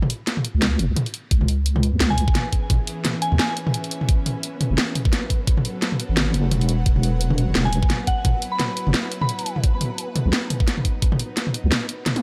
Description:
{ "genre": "half-time drum and bass", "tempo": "173 BPM", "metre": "4/4", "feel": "swing 57% on 16ths, half-time", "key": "C# minor", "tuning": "A4 = 441 Hz", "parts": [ { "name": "drum and bass drum kit", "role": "drums", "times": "0.0-12.2 s", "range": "hi-hat, snare drum, toms", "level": "-25 LUFS", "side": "equal", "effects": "none" }, { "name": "deep soft wobble bass", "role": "bass", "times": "0.5-11.7 s", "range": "E1 to D#2", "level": "-22 LUFS", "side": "equal", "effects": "chorus" }, { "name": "bowed-like drone", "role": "sustained chords", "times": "2.2-12.2 s", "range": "E3 to F#5", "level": "-36 LUFS", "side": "equal", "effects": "built-in reverb, sidechain pumping" }, { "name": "electronic kick drum", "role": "drums", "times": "1.3-11.1 s", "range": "none", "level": "-22 LUFS", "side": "equal", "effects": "none" }, { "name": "flickering grainy texture", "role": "texture", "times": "1.7-12.2 s", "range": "B3 to B4", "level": "-40 LUFS", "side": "equal", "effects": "built-in reverb" }, { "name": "soft synth bell", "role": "melody", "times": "2.1-3.5, 7.7-9.5 s", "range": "F#5 to B5", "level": "-32 LUFS", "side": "equal", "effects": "chorus, vintage 12-bit sampler grit, digital delay" } ], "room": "little or no reverb", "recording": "none", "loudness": "-22 LUFS", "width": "mono", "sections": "0.0-12.2 A section", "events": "break 1.0-1.3; drum fill 12.1", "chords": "0.0 N.C.; 1.3 C#m; 4.1 F#m; 6.9 Esus2; 9.6 B" }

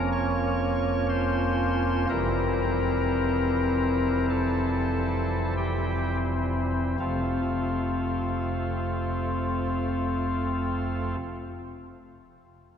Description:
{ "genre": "classical, chorale-style piece for pipe organ", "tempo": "41-63 BPM", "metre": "4/4", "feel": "rubato", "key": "F major", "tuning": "A4 = 440 Hz", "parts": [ { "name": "pipe organ, cornet", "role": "solo", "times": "0.0-11.2 s", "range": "F1 to Db5", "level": "-24 LUFS", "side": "equal", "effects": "none" } ], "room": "wet church reverb, RT60 3.6 s", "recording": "none", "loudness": "-24 LUFS", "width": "side -8 dB against mid", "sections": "0.0-7.0 A section; 7.0-12.8 B section", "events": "slowing down 0.0-7.0", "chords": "0.0 Bbm/F; 2.1 C7/F; 7.0 F" }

